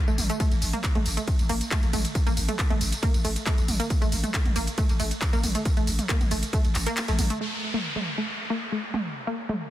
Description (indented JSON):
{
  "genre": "driving peak-time techno",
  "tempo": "137 BPM",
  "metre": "4/4",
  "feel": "straight",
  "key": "unclear",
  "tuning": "A4 = 436 Hz",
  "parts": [
    { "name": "wide unison pluck", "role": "riff", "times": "0.1-9.6 s", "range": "A3 to Bb3", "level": "-30 LUFS", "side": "right 1 dB", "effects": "cassette tape, sidechain pumping, dub echo" },
    { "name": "growling 808-style bass", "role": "bass", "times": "0.1-7.3 s", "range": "A1", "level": "-29 LUFS", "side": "equal", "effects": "overdrive, sidechain pumping, low-pass filter" },
    { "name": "techno drum kit", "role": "drums", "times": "0.1-9.6 s", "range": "handclaps, hi-hat, ride cymbal, tambourine, toms", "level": "-30 LUFS", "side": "right 1 dB", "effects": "sidechain pumping on hats, low-pass filter on hats, sidechain pumping on perc, low-pass filter on perc, low-pass filter on snare, sidechain pumping on toms, low-pass filter on toms, sidechain pumping on cymbals, low-pass filter on cymbals, low-pass filter on room" },
    { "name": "electronic kick drum", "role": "drums", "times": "0.4-6.6 s", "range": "none", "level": "-25 LUFS", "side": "equal", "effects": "none" },
    { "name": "downlifter", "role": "sound effects", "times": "7.4-9.7 s", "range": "none", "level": "-32 LUFS", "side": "equal", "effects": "none" }
  ],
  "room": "little or no reverb",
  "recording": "dense, heavily limited modern master",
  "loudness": "-23 LUFS",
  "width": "side -13 dB against mid",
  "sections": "0.0-7.4 A section; 7.4-9.7 B section",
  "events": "drop 0.0-7.4; kick drops out 7.0-7.4; filter sweep on drum 7.4-9.7; filter sweep on synth arpeggio sound 7.4-9.7",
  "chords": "none",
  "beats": "| 0.40 0.84 1.27 1.71 | 2.15 2.59 3.03 3.46 | 3.90 4.34 4.78 5.22 | 5.66 6.09 6.53 6.97 | 7.41 7.84 8.28 8.72 | 9.16 9.60"
}